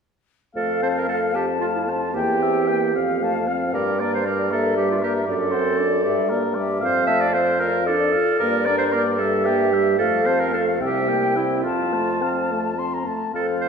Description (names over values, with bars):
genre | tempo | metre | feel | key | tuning
quick classical-period movement for wind quintet | 69-79 BPM (dotted quarters) | 6/8 | rubato | F major | A4 = 440 Hz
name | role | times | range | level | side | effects
mellow French horn | accompaniment | 0.5-13.7 s | G3 to F4 | -28 LUFS | left 1 dB | none
silver concert flute | melody | 0.6-13.7 s | C5 to A5 | -27 LUFS | left 5 dB | none
mellow oboe | second line | 0.6-13.7 s | Bb4 to C6 | -27 LUFS | left 2 dB | none
clear clarinet | accompaniment | 0.6-13.7 s | E4 to E5 | -22 LUFS | right 3 dB | none
mellow bassoon | bass | 0.6-13.7 s | C2 to G2 | -26 LUFS | right 1 dB | none
room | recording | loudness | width
wet scoring stage reverb, RT60 1.9 s | recorded in a church or concert hall | -19 LUFS | side -6 dB against mid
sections
0.6-13.4 A section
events
none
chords
0.6 F; 2.1 C7/E; 2.9 F; 3.7 Gm; 5.3 D7/F#; 6.0 Gm; 6.8 F; 7.6 Dm/F; 8.4 Gm; 9.2 Edim/G; 10.0 F; 10.8 C7; 11.6 F